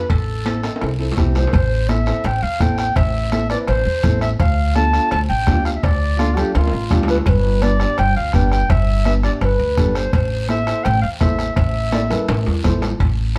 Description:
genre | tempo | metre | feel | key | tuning
latin, cumbia | 167 BPM | 4/4 | straight | A minor | A4 = 436 Hz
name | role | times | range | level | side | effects
mellow clarinet | melody | 0.0-12.6 s | A4 to A5 | -24 LUFS | equal | plate reverb
upright bass | bass | 0.0-13.4 s | G1 to E2 | -22 LUFS | equal | none
bombo | percussion | 0.1-13.4 s | none | -23 LUFS | equal | none
congas | percussion | 0.1-13.2 s | none | -28 LUFS | equal | none
guiro | percussion | 0.1-13.4 s | none | -38 LUFS | equal | none
timbales and cowbell | percussion | 0.1-13.4 s | none | -31 LUFS | equal | none
clear upright piano | accompaniment | 0.5-13.4 s | C4 to D5 | -29 LUFS | equal | none
bright trombone | second line | 6.2-7.0 s | F4 to G4 | -28 LUFS | equal | none
room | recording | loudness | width
light reverb | none | -18 LUFS | mono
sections
0.0-1.5 A section; 1.5-13.0 B section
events
drum fill 0.6-1.5, 6.5-7.3, 11.9-13.0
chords
0.1 Am; 4.4 Dm; 7.3 G; 10.1 Am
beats
| 0.10 0.45 0.81 1.17 | 1.53 1.89 2.25 2.60 | 2.96 3.32 3.68 4.04 | 4.40 4.76 5.11 5.47 | 5.83 6.19 6.55 6.91 | 7.26 7.62 7.98 8.34 | 8.70 9.06 9.42 9.77 | 10.13 10.49 10.85 11.21 | 11.57 11.92 12.28 12.64 | 13.00 13.36

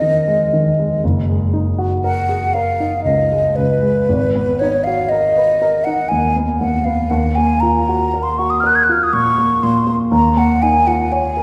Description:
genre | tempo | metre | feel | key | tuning
classical, impressionist duo for flute and grand piano | 59 BPM | 3/4 | rubato | Eb minor | A4 = 440 Hz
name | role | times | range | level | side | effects
mellow hollow concert flute | melody | 0.0-11.4 s | Cb5 to Ab6 | -18 LUFS | equal | none
dark baby grand piano | accompaniment | 0.0-11.4 s | Gb1 to Db5 | -20 LUFS | equal | none
room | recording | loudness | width
wet scoring stage reverb, RT60 1.9 s | recorded in a church or concert hall | -16 LUFS | mono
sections
0.0-11.4 A section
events
none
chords
0.0 Fm7/Eb; 1.0 Gb69; 4.1 Abm9; 7.1 Ebmadd9; 10.1 Db69/Eb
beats
0.00 | 1.02 2.03 3.04 | 4.07 5.09 6.08 | 7.08 8.11 9.13 | 10.13 11.12

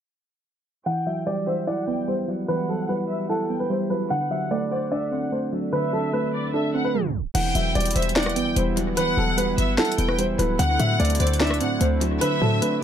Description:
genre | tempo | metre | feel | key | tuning
hip hop, trap | 148 BPM | 4/4 | half-time | E minor | A4 = 441 Hz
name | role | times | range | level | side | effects
dark baby grand piano | melody | 0.9-12.8 s | A4 to F#5 | -26 LUFS | right 1 dB | analog delay
clear studio violin section | second line | 0.9-12.8 s | D5 to G5 | -30 LUFS | left 2 dB | analog delay
soft electric-piano-like synth keys | accompaniment | 0.9-12.8 s | D3 to E4 | -26 LUFS | right 2 dB | chorus, analog delay
warm analog pad | sustained chords | 7.3-12.8 s | D3 to E4 | -33 LUFS | left 2 dB | chorus, tremolo
short 808-style bass | bass | 7.3-12.6 s | D1 to A2 | -24 LUFS | left 1 dB | none
trap drum kit | drums | 7.3-12.7 s | crash cymbal, hi-hat, rim click, snare drum | -28 LUFS | left 1 dB | overdrive, analog delay
room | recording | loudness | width
light reverb | echo-heavy mix, low-pass filter, tape stop | -21 LUFS | side -9 dB against mid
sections
0.9-7.3 A section; 7.3-12.8 B section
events
filter sweep 0.9-7.3; tape stop 6.9-7.3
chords
0.9 Emadd9; 4.1 D7; 7.3 Emadd9; 10.6 D7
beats
| 0.86 1.27 1.67 2.08 | 2.48 2.89 3.29 3.70 | 4.11 4.51 4.92 5.32 | 5.73 6.13 6.54 6.94 | 7.35 7.75 8.16 8.56 | 8.97 9.38 9.78 10.19 | 10.59 11.00 11.40 11.81 | 12.21 12.62

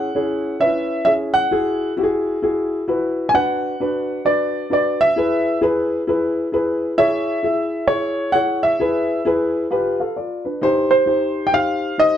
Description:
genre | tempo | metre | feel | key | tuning
soul | 132 BPM | 4/4 | swing 62% on 8ths | unclear | A4 = 442 Hz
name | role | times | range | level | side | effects
warm grand piano | melody | 0.0-12.2 s | C5 to G#5 | -18 LUFS | right 1 dB | none
dark upright piano | accompaniment | 0.0-12.2 s | C#4 to F5 | -19 LUFS | left 1 dB | none
room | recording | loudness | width
light reverb | dark, warm production | -17 LUFS | side -10 dB against mid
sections
0.0-10.6 A section; 10.6-12.2 B section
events
none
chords
0.0 C#m; 1.5 Eadd9; 3.3 Bm; 5.2 E; 7.0 C#m/E; 8.8 E; 9.7 G7; 10.6 Cm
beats
0.15 0.61 1.06 | 1.52 1.98 2.43 2.89 | 3.34 3.80 4.25 4.71 | 5.16 5.62 6.07 6.53 | 6.98 7.44 7.89 8.35 | 8.80 9.26 9.71 10.17 | 10.62 11.08 11.53 11.99

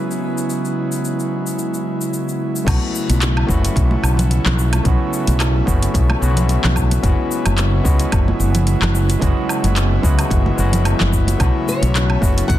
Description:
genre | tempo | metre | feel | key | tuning
sunset chillout | 110 BPM | 4/4 | swing 55% on 16ths | unclear | A4 = 442 Hz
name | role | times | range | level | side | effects
flamenco guitar | melody | 0.0-2.1, 11.7-12.6 s | B4 to F#5 | -28 LUFS | left 1 dB | tape echo
overdriven tine electric piano | accompaniment | 0.0-12.6 s | G#3 to F#4 | -24 LUFS | moving between left 5 dB and right 6 dB | auto-pan, tape echo
airy breathy pad | sustained chords | 0.0-12.6 s | C#3 to E4 | -23 LUFS | equal | chorus
deep house drum kit | drums | 0.1-12.6 s | crash cymbal, handclaps, hi-hat, shaker, woodblock | -24 LUFS | left 1 dB | overdrive
mellow fretless electric bass | bass | 2.7-12.6 s | F#1 to C#2 | -16 LUFS | equal | none
electronic kick drum | drums | 2.7-12.6 s | none | -18 LUFS | equal | overdrive
congas | percussion | 3.1-12.3 s | none | -26 LUFS | right 2 dB | none
room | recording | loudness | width
light reverb, digital ambience | dense, heavily limited modern master | -15 LUFS | side -13 dB against mid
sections
0.0-2.7 A section; 2.7-12.6 B section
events
none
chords
0.0 F#9sus4; 2.7 B9sus4; 7.0 F#9sus4; 11.4 B9sus4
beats
| 0.49 1.03 1.58 2.13 | 2.67 3.22 3.76 4.31 | 4.85 5.40 5.94 6.49 | 7.04 7.58 8.13 8.67 | 9.22 9.76 10.31 10.85 | 11.40 11.94 12.49

